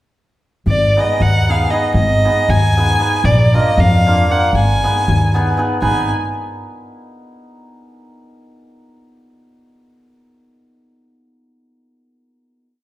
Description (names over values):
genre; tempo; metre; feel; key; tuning
balkan folk, Balkan wedding band; 233 BPM (eighths); 5/8; straight; Ab dorian sharp4; A4 = 440 Hz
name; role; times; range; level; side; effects
rich violin; melody; 0.7-6.1 s; D5 to Ab5; -17 LUFS; equal; slapback echo
upright bass; bass; 0.7-6.1 s; Ab1 to F2; -17 LUFS; equal; none
darbuka; percussion; 0.7-6.1 s; none; -18 LUFS; left 1 dB; none
hammered dulcimer; accompaniment; 1.0-6.1 s; Bb3 to Cb5; -20 LUFS; equal; none
room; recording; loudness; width
wet recital hall reverb, RT60 1.4 s; heard from further back in the room; -12 LUFS; side -15 dB against mid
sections
0.7-5.8 A section; 5.8-7.1 final chord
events
none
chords
0.7 Abm; 3.2 Bb; 4.5 Abm